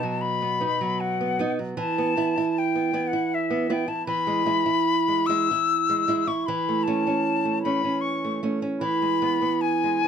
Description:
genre	romantic duo for flute and classical guitar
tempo	77 BPM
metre	3/4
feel	uneven beats, rubato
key	E minor, E major from 4.1 s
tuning	A4 = 440 Hz
part	silver concert flute	melody	0.0-10.1 s	E5 to E6	-25 LUFS	left 7 dB	none
part	nylon-string guitar	accompaniment	0.0-10.1 s	B2 to E4	-24 LUFS	right 4 dB	none
room	moderate small room ambience, RT60 0.5 s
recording	none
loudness	-22 LUFS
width	side -7 dB against mid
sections	0.0-10.1 A section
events	none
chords	0.0 B; 1.8 E5; 4.1 E; 6.5 A/E; 8.8 E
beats	0.22 1.00 | 1.79 2.57 3.33 | 4.08 4.87 5.70 | 6.48 7.26 8.04 | 8.82 9.62

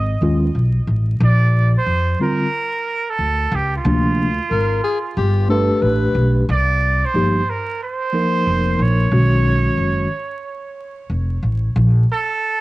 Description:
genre	hip hop, jazz-hop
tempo	91 BPM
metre	4/4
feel	swing 65% on 16ths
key	unclear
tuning	A4 = 438 Hz
part	trumpet with straight mute	melody	0.0-12.6 s	F4 to D#5	-22 LUFS	right 3 dB	cassette tape
part	upright bass	bass	0.0-12.0 s	F1 to F2	-17 LUFS	equal	none
part	mellow tine electric piano	accompaniment	0.2-10.1 s	C3 to B4	-18 LUFS	equal	medium stereo tremolo
part	breathy tenor saxophone	second line	4.5-6.4 s	G4 to B4	-22 LUFS	left 4 dB	none
room	light reverb, small room ambience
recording	home recording on cassette, vinyl crackle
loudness	-15 LUFS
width	side -18 dB against mid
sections	0.0-1.2 A section; 1.2-11.8 B section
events	none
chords	0.0 B13; 1.2 Bb69; 3.8 Dm7b5; 5.2 G; 6.5 Cm7; 9.1 B69; 11.8 N.C.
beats	0.55 | 1.21 1.87 2.53 3.19 | 3.85 4.51 5.17 5.83 | 6.49 7.15 7.80 8.46 | 9.12 9.78 10.44 11.10 | 11.76 12.42

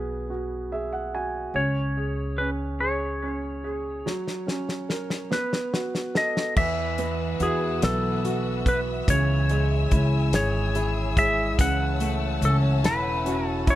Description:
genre	six-eight pop ballad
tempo	48 BPM (dotted quarters)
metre	6/8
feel	straight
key	E lydian, E major from 6.6 s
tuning	A4 = 439 Hz
part	clear baby grand piano	accompaniment	0.0-13.8 s	C#3 to G#5	-29 LUFS	right 3 dB	none
part	upright bass	bass	0.0-13.8 s	E1 to E2	-27 LUFS	equal	none
part	clean lap steel guitar	melody	1.6-13.8 s	G#4 to F#5	-28 LUFS	left 1 dB	digital delay
part	damped 70s drum kit	drums	4.1-13.8 s	crash cymbal, hi-hat, kick drum, snare drum	-26 LUFS	left 1 dB	none
part	warm studio string section	sustained chords	6.6-13.8 s	B4 to E6	-34 LUFS	left 4 dB	none
part	fingerpicked steel-string acoustic guitar	arpeggios	6.6-13.8 s	E3 to G#4	-33 LUFS	left 4 dB	none
room	studio ambience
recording	none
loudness	-23 LUFS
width	side -14 dB against mid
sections	0.0-6.6 A section; 6.6-13.8 B section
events	grand piano fill 0.3-1.5; drum fill 4.1-6.6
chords	0.0 Eadd9/B; 1.5 C#5; 4.1 F#; 5.3 B5; 6.6 Esus2; 9.1 C#m; 11.6 A6/C#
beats	0.29 | 1.54 2.80 | 4.06 5.31 | 6.57 7.82 | 9.08 10.33 | 11.59 12.84

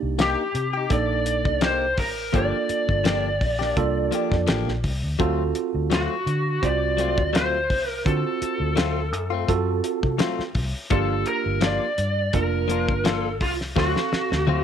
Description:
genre	straight-eighth soul blues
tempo	84 BPM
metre	4/4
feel	swing 54% on 16ths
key	G minor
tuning	A4 = 441 Hz
part	tine electric piano	accompaniment	0.0-14.6 s	Bb3 to E#5	-27 LUFS	right 11 dB	none
part	vintage muted fingered electric bass	bass	0.0-14.6 s	F1 to D3	-27 LUFS	left 1 dB	none
part	lead guitar through a small cranked amp	melody	0.2-14.6 s	F4 to D5	-25 LUFS	left 1 dB	overdrive
part	direct-recorded clean electric guitar	stabs	0.2-14.6 s	F3 to G4	-29 LUFS	left 12 dB	none
part	cloth-damped thuddy drum kit	drums	0.2-14.6 s	hi-hat, kick drum, snare drum, toms	-25 LUFS	left 1 dB	none
room	light reverb, small room ambience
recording	1960s-style stereo with parts hard left and right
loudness	-21 LUFS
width	side -8 dB against mid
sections	0.0-14.6 A section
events	drum fill 13.8-14.6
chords	0.0 Cm7; 2.3 Gm7; 5.2 D7#9; 10.9 Gm7; 13.8 D7#9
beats	0.19 0.91 1.62 | 2.34 3.06 3.77 4.49 | 5.20 5.92 6.63 7.34 | 8.06 8.77 9.49 10.20 | 10.91 11.63 12.34 13.05 | 13.77 14.48

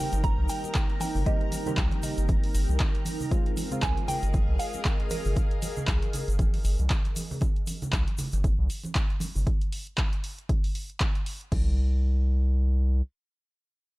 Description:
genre	deep house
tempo	117 BPM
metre	4/4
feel	swing 57% on 16ths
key	unclear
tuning	A4 = 440 Hz
part	mallet-like synth pluck	melody	0.0-5.3 s	Bb4 to Bb5	-36 LUFS	right 1 dB	chorus, phaser, tape echo
part	warm analog keys	stabs	0.0-5.3 s	Eb3 to G4	-37 LUFS	equal	chorus, sidechain pumping, tape echo
part	airy breathy pad	texture	0.0-7.4 s	Eb4 to G5	-37 LUFS	right 1 dB	chorus, sidechain pumping
part	soft string machine	texture	0.0-7.4 s	Ab4 to Bb5	-44 LUFS	left 1 dB	ensemble chorus
part	round analog bass	bass	0.1-13.0 s	G1 to C2	-25 LUFS	equal	sidechain pumping
part	punchy analog drum machine	drums	0.1-11.6 s	crash cymbal, handclaps, hi-hat	-36 LUFS	equal	overdrive
part	congas	percussion	0.1-9.4 s	none	-36 LUFS	right 2 dB	none
part	egg shaker	percussion	0.1-9.4 s	none	-42 LUFS	left 2 dB	none
part	electronic kick drum	drums	0.2-11.6 s	none	-27 LUFS	equal	none
room	little or no reverb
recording	dry, gritty hardware recording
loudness	-24 LUFS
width	side -20 dB against mid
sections	0.0-11.5 A section; 11.5-14.0 B section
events	drop 0.0-11.5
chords	0.0 Cm7; 3.3 Fm; 11.5 N.C.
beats	0.24 0.75 | 1.26 1.78 2.29 2.80 | 3.31 3.83 4.34 4.85 | 5.37 5.88 6.39 6.90 | 7.42 7.93 8.44 8.96 | 9.47 9.98 10.49 11.01 | 11.52 12.03 12.54

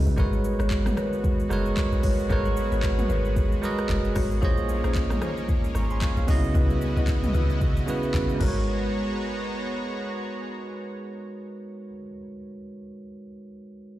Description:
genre	amapiano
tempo	113 BPM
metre	4/4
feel	swing 58% on 16ths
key	G# minor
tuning	A4 = 437 Hz
part	bell-like tine electric piano	accompaniment	0.0-14.0 s	C#3 to C#6	-29 LUFS	right 3 dB	none
part	deep log drum bass	bass	0.0-12.0 s	F#1 to C#2	-26 LUFS	equal	none
part	deep house drum kit	drums	0.1-8.5 s	crash cymbal, handclaps, hi-hat, kick drum, rim click, shaker, toms	-26 LUFS	equal	none
part	lush unison pad	sustained chords	0.2-12.0 s	C#3 to A#5	-34 LUFS	left 2 dB	chorus
part	buzzing marimba with medium mallets	stabs	0.2-12.0 s	D#4 to D#5	-36 LUFS	left 8 dB	ping-pong delay
part	congas	percussion	0.2-8.9 s	none	-37 LUFS	left 3 dB	none
room	digital ambience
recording	played on a big sound system in a bare room, stone room reverb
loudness	-22 LUFS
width	side -14 dB against mid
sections	0.0-8.7 A section; 8.7-12.9 B section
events	break 0.0; drop 0.0-8.7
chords	0.2 G#m11; 4.4 A#m11; 6.3 C#m11; 8.4 G#m11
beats	| 0.18 0.71 1.24 1.77 | 2.30 2.83 3.36 3.89 | 4.42 4.96 5.49 6.02 | 6.55 7.08 7.61 8.14 | 8.67 9.20 9.73 10.27 | 10.79 11.33 11.86 12.39

